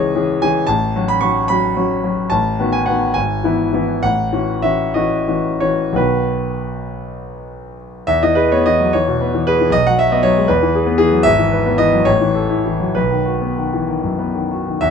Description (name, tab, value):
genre	classical, romantic character piece for solo piano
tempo	54-80 BPM (dotted quarters)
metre	6/8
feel	rubato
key	E major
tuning	A4 = 437 Hz
part	clear concert grand piano	solo	0.0-14.9 s	G#1 to C#6	-14 LUFS	left 1 dB	none
room	light reverb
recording	minimal, uncompressed stereo recording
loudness	-14 LUFS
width	side -6 dB against mid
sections	0.0-8.1 A section; 8.1-14.9 B section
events	none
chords	0.0 C#m; 0.7 F#m/A; 2.3 B7/A; 3.1 E/G#; 4.0 F#m7/A; 6.0 B; 8.1 E; 9.7 B5; 10.5 E; 11.2 E/G#; 12.1 A; 12.9 B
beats	| 0.68 1.49 | 2.31 3.15 | 4.02 4.94 | 5.95 7.05 | 8.07 8.93 | 9.72 10.48 | 11.25 12.06 | 12.95 13.89 | 14.81